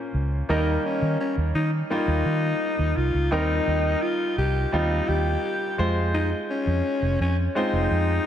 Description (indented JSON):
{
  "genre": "1980s-style pop",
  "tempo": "85 BPM",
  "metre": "4/4",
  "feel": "straight",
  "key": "F minor",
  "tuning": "A4 = 438 Hz",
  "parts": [
    { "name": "breathy alto saxophone", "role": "melody", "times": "0.0-8.3 s", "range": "Db4 to G4", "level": "-26 LUFS", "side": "left 3 dB", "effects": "tape echo" },
    { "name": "bright concert grand piano", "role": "accompaniment", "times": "0.0-8.3 s", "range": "Eb3 to C5", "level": "-27 LUFS", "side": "right 1 dB", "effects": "none" },
    { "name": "vintage muted fingered electric bass", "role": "bass", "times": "0.1-8.2 s", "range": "F1 to Eb3", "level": "-24 LUFS", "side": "equal", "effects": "none" }
  ],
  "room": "wet plate reverb, RT60 2.7 s",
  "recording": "dreamy mix soaked in reverb",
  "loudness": "-21 LUFS",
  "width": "side -10 dB against mid",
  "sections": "0.0-8.3 A section",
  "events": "none",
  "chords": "0.5 Eb; 3.3 Cm7; 5.8 Fm"
}